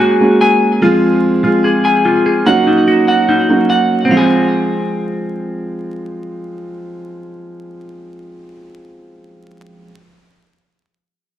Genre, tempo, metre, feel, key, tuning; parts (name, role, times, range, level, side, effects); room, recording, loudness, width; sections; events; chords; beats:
hip hop; 146 BPM; 4/4; half-time; F phrygian; A4 = 440 Hz
dark concert grand piano; accompaniment; 0.0-9.9 s; F3 to Ab4; -15 LUFS; right 2 dB
semi-hollow electric guitar; arpeggios; 0.0-8.9 s; C4 to Ab5; -13 LUFS; left 1 dB; digital delay
light reverb, digital ambience; vinyl crackle; -11 LUFS; side -11 dB against mid
0.0-4.1 A section; 4.1-7.4 B section
0.0 Gbadd9; 0.8 Fm; 2.5 Ebm7; 4.1 Fm
0.00 0.41 | 0.82 1.23 1.64 2.05 | 2.46 2.88 3.29 3.70 | 4.11 4.52 4.93 5.34 | 5.75 6.16 6.58 6.99